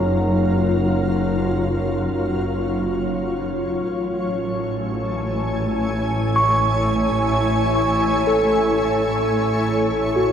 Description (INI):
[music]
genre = ambient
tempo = free time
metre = none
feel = none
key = unclear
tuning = A4 = 440 Hz
[part]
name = shimmering ambient pad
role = sustained chords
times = 0.0-10.3 s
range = F#3 to G#5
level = -22 LUFS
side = left 1 dB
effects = chorus, built-in reverb
[part]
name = mellow tine electric piano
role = arpeggios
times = 0.0-10.3 s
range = F#3 to C#6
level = -23 LUFS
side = equal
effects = medium stereo tremolo, analog delay
[part]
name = rich symphonic double bass section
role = bass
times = 0.0-10.3 s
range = F#1 to A1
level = -24 LUFS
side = equal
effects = none
[part]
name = overtone-sweeping drone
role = drone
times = 0.0-10.3 s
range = F#3 to C#4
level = -29 LUFS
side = left 1 dB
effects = chorus, built-in reverb
[sound]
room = wet cathedral reverb, RT60 6.0 s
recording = dreamy mix soaked in reverb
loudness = -18 LUFS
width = side -8 dB against mid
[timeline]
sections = 0.0-10.3 A section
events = fade-in on ambient pad 0.0-10.3; fade-out on synth drone 0.0-10.3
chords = 0.0 F#maj7; 3.9 Amaj7